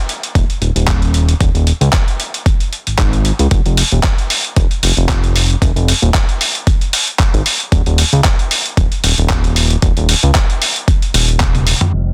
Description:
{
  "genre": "nu-disco, nu disco",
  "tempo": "114 BPM",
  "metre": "4/4",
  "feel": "swing 55% on 16ths",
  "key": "unclear",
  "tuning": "A4 = 443 Hz",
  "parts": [
    { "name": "dusty soul sampler-style drum kit", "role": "drums", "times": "0.1-12.0 s", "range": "crash cymbal, handclaps, hi-hat, toms", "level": "-19 LUFS", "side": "equal", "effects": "overdrive" },
    { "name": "fat analog bass", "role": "bass", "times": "0.4-12.1 s", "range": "Eb1 to Db2", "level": "-16 LUFS", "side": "equal", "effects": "none" },
    { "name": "electronic kick drum", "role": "drums", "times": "0.4-11.5 s", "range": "none", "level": "-16 LUFS", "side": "equal", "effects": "overdrive" }
  ],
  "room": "little or no reverb",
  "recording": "dense, heavily limited modern master, low-pass filter",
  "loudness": "-14 LUFS",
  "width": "mono",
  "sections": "0.0-11.9 A section",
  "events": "drum fill 11.4-11.9",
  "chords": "none"
}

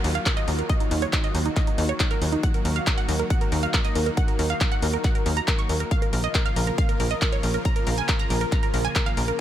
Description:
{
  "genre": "uplifting trance",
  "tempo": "138 BPM",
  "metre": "4/4",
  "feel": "straight",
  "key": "Eb minor",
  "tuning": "A4 = 439 Hz",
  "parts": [
    { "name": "wide unison pluck", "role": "melody", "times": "0.0-9.4 s", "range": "Eb4 to Db6", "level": "-28 LUFS", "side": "right 2 dB", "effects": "auto-pan, sidechain pumping, tape echo" },
    { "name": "supersaw pad", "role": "sustained chords", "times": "0.0-9.4 s", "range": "Db3 to Bb4", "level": "-32 LUFS", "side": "right 1 dB", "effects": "sidechain pumping" },
    { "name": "tight sequencer bass", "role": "bass", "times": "0.0-9.3 s", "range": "Bb1 to Eb2", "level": "-24 LUFS", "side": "equal", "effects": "sidechain pumping" },
    { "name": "big-room dance drum kit", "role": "drums", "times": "0.0-9.4 s", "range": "handclaps, hi-hat", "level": "-30 LUFS", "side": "equal", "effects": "none" },
    { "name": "downlifter", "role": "sound effects", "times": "0.0-2.4 s", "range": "none", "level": "-40 LUFS", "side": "equal", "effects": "none" },
    { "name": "electronic kick drum", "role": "drums", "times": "0.3-9.0 s", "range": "none", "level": "-23 LUFS", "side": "equal", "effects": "none" }
  ],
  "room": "digital ambience",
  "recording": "none",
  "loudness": "-21 LUFS",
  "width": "side -11 dB against mid",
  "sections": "0.0-9.4 A section",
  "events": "none",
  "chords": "0.0 Ebmadd9; 5.9 Bbm"
}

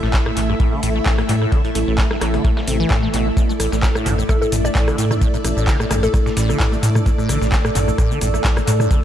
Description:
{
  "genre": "acid house",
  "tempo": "130 BPM",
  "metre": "4/4",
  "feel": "swing 54% on 16ths",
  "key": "unclear",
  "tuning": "A4 = 440 Hz",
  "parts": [
    { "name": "string machine, full ensemble", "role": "sustained chords", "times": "0.0-9.0 s", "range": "A3 to E5", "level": "-24 LUFS", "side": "equal", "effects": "ensemble chorus, sidechain pumping" },
    { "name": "liquid acid bass", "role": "riff", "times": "0.0-9.0 s", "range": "G2 to C4", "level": "-24 LUFS", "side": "equal", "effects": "phaser, vintage 12-bit sampler grit, sidechain pumping, analog delay" },
    { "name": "round analog bass", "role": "bass", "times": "0.0-8.8 s", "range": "A1 to A2", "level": "-21 LUFS", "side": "equal", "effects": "sidechain pumping" },
    { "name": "dusty soul sampler-style drum kit", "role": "drums", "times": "0.0-9.0 s", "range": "hi-hat, snare drum", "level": "-34 LUFS", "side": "equal", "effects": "none" },
    { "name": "granular cloud pad", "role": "texture", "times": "0.2-9.0 s", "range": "A3 to E6", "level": "-28 LUFS", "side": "right 1 dB", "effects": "built-in reverb, sidechain pumping" },
    { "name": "electro analog drum machine", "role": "drums", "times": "0.1-9.0 s", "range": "handclaps, hi-hat, rim click, shaker, toms", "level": "-24 LUFS", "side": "equal", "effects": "studio reverb, analog delay" },
    { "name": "electronic kick drum", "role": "drums", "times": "0.1-9.0 s", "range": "none", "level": "-18 LUFS", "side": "equal", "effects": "studio reverb" },
    { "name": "hollow square pluck", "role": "melody", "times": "4.3-6.7 s", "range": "A4 to D5", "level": "-25 LUFS", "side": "left 1 dB", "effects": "chorus, tape echo" }
  ],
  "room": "little or no reverb",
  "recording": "echo-heavy mix",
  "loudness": "-15 LUFS",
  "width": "side -10 dB against mid",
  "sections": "0.0-9.0 A section",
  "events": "fade-in on ambient pad 0.0-9.0",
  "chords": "0.0 A5"
}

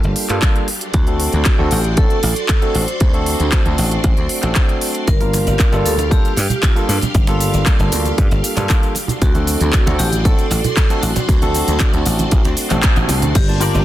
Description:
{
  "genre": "nu-disco, nu disco",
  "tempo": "116 BPM",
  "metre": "4/4",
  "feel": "straight",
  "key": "unclear",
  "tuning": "A4 = 440 Hz",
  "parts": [
    { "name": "barky tine electric piano", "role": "accompaniment", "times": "0.0-13.8 s", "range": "G3 to A5", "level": "-22 LUFS", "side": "equal", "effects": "low-pass filter, dub echo" },
    { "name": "string machine, full ensemble", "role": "sustained chords", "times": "0.0-13.8 s", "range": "F#4 to C6", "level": "-26 LUFS", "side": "equal", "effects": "ensemble chorus, sidechain pumping" },
    { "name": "dry thumbed slap bass", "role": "bass", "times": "0.0-13.8 s", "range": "G1 to G2", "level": "-18 LUFS", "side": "equal", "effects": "none" },
    { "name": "house drum kit", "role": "drums", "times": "0.0-13.8 s", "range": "cabasa, crash cymbal, handclaps, hi-hat", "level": "-22 LUFS", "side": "equal", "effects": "none" },
    { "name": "electronic kick drum", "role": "drums", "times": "0.4-13.5 s", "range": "none", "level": "-15 LUFS", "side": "equal", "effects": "none" },
    { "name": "vibraphone with hard mallets", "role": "melody", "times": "0.9-13.8 s", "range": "D4 to C5", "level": "-25 LUFS", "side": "moving between left 2 dB and right 6 dB", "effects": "auto-pan, dub echo" },
    { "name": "congas", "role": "percussion", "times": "5.1-13.3 s", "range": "none", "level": "-25 LUFS", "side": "right 4 dB", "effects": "none" },
    { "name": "direct-recorded clean electric guitar", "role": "riff", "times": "13.6-13.8 s", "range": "F4 to D5", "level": "-20 LUFS", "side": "left 5 dB", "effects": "ensemble chorus" }
  ],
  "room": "little or no reverb",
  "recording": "dense, heavily limited modern master",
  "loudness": "-13 LUFS",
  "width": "side -14 dB against mid",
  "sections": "0.0-13.4 A section",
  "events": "band accent 12.8",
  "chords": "0.0 Gm7; 0.7 D7; 5.1 Gm7; 9.0 D7"
}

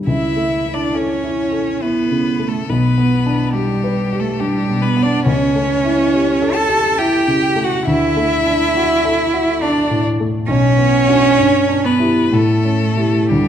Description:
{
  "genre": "classical, slow romantic movement for piano trio",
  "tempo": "69 BPM",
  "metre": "3/4",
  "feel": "rubato",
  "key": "unclear",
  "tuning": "A4 = 440 Hz",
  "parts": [
    { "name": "dark baby grand piano", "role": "accompaniment", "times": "0.0-13.5 s", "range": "B1 to B4", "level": "-17 LUFS", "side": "left 2 dB", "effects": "none" },
    { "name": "clear violin", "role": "melody", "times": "0.1-13.5 s", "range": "G4 to A5", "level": "-21 LUFS", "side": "left 7 dB", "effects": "none" },
    { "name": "rich cello", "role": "second line", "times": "0.1-13.5 s", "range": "G3 to A4", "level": "-17 LUFS", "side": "right 5 dB", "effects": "none" }
  ],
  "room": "wet recital hall reverb, RT60 1.6 s",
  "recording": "dark, warm production",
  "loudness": "-13 LUFS",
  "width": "side -9 dB against mid",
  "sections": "0.0-13.5 A section",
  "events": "none",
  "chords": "0.1 A/C#; 2.7 G/B; 5.3 A7/C#; 7.9 D; 10.5 Bm; 11.4 Em7/G; 12.3 A7"
}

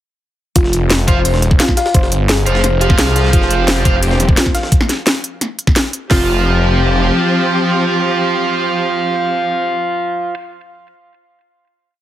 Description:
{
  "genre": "dark technical drum and bass",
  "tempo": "173 BPM",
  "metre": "4/4",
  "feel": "straight",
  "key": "unclear",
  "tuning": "A4 = 441 Hz",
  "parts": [
    { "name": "soft round pluck", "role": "arpeggios", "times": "0.6-6.3 s", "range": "F4 to F5", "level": "-20 LUFS", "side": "left 1 dB", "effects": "chorus, sidechain pumping, tape echo" },
    { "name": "snarling distorted saw bass", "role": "bass", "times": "0.6-7.1 s", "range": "F1 to C2", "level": "-15 LUFS", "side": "equal", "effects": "distortion, tube saturation, sidechain pumping" },
    { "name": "breakbeat sampler-style drum kit", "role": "drums", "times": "0.6-4.7 s", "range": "hi-hat, snare drum", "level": "-26 LUFS", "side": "equal", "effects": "none" },
    { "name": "drum and bass drum kit", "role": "drums", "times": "0.6-6.2 s", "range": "hi-hat, kick drum, snare drum", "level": "-13 LUFS", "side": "equal", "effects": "none" },
    { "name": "drum and bass drum kit", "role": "drums", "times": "0.6-6.0 s", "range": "hi-hat, snare drum", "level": "-16 LUFS", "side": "equal", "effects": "none" },
    { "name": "high-gain distorted guitar", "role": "stabs", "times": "1.1-3.9, 6.1-10.3 s", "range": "F4 to F5", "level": "-17 LUFS", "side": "right 3 dB", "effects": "distortion, tape echo" },
    { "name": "rich studio string section", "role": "sustained chords", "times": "3.3-9.6 s", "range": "F3 to G4", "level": "-19 LUFS", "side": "left 2 dB", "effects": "vintage 12-bit sampler grit, sidechain pumping" }
  ],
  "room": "light reverb, digital ambience",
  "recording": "heavily compressed radio sound",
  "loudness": "-12 LUFS",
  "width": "side -12 dB against mid",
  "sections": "0.6-6.1 drop; 6.1-8.9 final chord",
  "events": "drop 0.6-6.1",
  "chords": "0.6 F5"
}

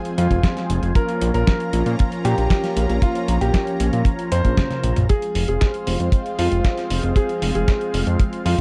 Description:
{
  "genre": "italo disco",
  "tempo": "116 BPM",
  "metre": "4/4",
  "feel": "straight",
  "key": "F minor",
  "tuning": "A4 = 440 Hz",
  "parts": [
    { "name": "lush unison pad", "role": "sustained chords", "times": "0.0-8.6 s", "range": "Ab3 to Bb5", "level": "-31 LUFS", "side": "equal", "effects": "chorus, phaser" },
    { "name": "mellow synth brass", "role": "stabs", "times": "0.0-8.6 s", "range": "F3 to F4", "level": "-30 LUFS", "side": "equal", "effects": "chorus" },
    { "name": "dusty soul sampler-style drum kit", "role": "drums", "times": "0.1-8.6 s", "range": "hi-hat, snare drum, toms", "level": "-29 LUFS", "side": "equal", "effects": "high-pass filter on hats, high-pass filter on snare, high-pass filter on toms" },
    { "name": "clear concert grand piano", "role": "melody", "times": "0.2-8.6 s", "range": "F4 to C5", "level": "-28 LUFS", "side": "equal", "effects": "tape echo" },
    { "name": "fat analog bass", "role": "bass", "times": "0.2-8.6 s", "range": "F1 to Bb2", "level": "-23 LUFS", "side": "equal", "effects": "none" },
    { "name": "kick drum", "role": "drums", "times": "0.3-8.6 s", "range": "none", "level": "-20 LUFS", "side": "equal", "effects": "none" }
  ],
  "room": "little or no reverb",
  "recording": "dry, close 1970s-style studio recording",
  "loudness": "-20 LUFS",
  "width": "mono",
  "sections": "0.0-5.1 A section; 5.1-8.6 B section",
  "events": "drum fill 4.6-5.1",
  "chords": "0.0 Fm; 1.0 Bbm; 5.1 Fm"
}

